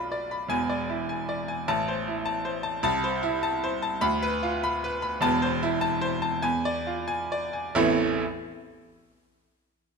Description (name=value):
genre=classical, virtuoso piano study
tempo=87-105 BPM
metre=4/4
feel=rubato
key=A minor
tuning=A4 = 440 Hz
part: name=clear baby grand piano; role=solo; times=0.0-8.2 s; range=E1 to B5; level=-25 LUFS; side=equal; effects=none
room=moderate recital hall reverb, RT60 1.7 s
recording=close, detailed microphones, faint mains hum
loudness=-24 LUFS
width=side -4 dB against mid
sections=0.0-7.7 A section; 7.7-10.0 B section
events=slowing down 1.7-7.7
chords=0.0 Bdim; 0.5 E7; 1.7 Am; 2.8 Am/C; 4.0 Bdim/D; 5.2 Am/E; 6.4 E7b9; 7.7 Am